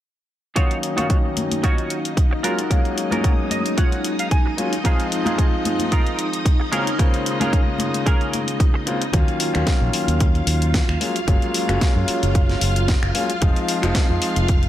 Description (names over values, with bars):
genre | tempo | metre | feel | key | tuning
nu-disco, nu disco | 112 BPM | 4/4 | swing 55% on 16ths | Eb dorian | A4 = 441 Hz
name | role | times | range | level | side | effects
warm concert grand piano | accompaniment | 0.6-14.7 s | Db3 to F5 | -24 LUFS | left 2 dB | sidechain pumping, low-pass filter, analog delay
string machine, full ensemble | sustained chords | 0.6-14.7 s | Eb4 to F5 | -28 LUFS | equal | ensemble chorus, sidechain pumping
semi-hollow electric guitar | riff | 0.6-8.9 s | Db4 to Ab5 | -27 LUFS | right 3 dB | analog chorus, low-pass filter, analog delay
electronic kick drum | drums | 0.6-14.6 s | none | -18 LUFS | equal | none
house drum kit | drums | 0.6-14.7 s | finger snaps, hi-hat, snare drum | -26 LUFS | left 2 dB | none
congas | percussion | 1.0-8.5 s | none | -28 LUFS | left 4 dB | none
fingered electric bass with an envelope filter | bass | 9.1-14.7 s | F1 to Gb2 | -21 LUFS | equal | sidechain pumping
room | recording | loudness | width
digital ambience | none | -17 LUFS | side -12 dB against mid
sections
0.6-9.1 A section; 9.1-14.7 B section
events
filter sweep on grand piano 0.6-9.1; clean electric guitar fill 3.2-4.8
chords
0.6 Ebm9; 4.8 Fm7; 6.7 Bbm7; 9.1 Ebm9; 11.0 Gbmaj7; 13.4 Fm7